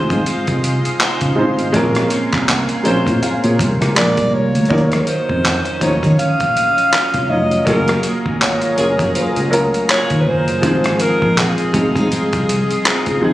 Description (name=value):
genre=contemporary R&B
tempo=81 BPM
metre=4/4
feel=swing 58% on 16ths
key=Bb minor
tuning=A4 = 440 Hz
part: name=dark baby grand piano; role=accompaniment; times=0.0-13.3 s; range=F3 to F5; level=-20 LUFS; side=equal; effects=none
part: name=lush unison pad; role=sustained chords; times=0.0-13.3 s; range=Db4 to Eb6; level=-26 LUFS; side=left 1 dB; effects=chorus
part: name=clean electric guitar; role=arpeggios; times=0.0-13.3 s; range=Ab2 to C5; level=-24 LUFS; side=right 2 dB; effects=digital delay
part: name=smooth gliding synth bass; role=bass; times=0.0-13.3 s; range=F1 to Eb3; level=-18 LUFS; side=equal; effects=none
part: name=dusty soul sampler-style drum kit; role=drums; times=0.1-13.2 s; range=handclaps, hi-hat, kick drum, rim click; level=-20 LUFS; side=equal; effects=overdrive
part: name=warm alto saxophone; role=melody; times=4.0-13.3 s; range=Ab4 to F5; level=-18 LUFS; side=equal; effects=digital delay
room=light reverb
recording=recorded on a phone in the room, club reverb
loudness=-13 LUFS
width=side -15 dB against mid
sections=0.0-13.3 A section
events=none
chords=0.0 Fm7; 1.7 Bbm9; 4.0 Bb7; 4.7 Ebm9; 7.7 Gbmaj9; 10.6 Fm7/Ab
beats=0.26 1.00 | 1.74 2.48 3.22 3.96 | 4.71 5.45 6.19 6.93 | 7.67 8.41 9.15 9.89 | 10.63 11.37 12.11 12.85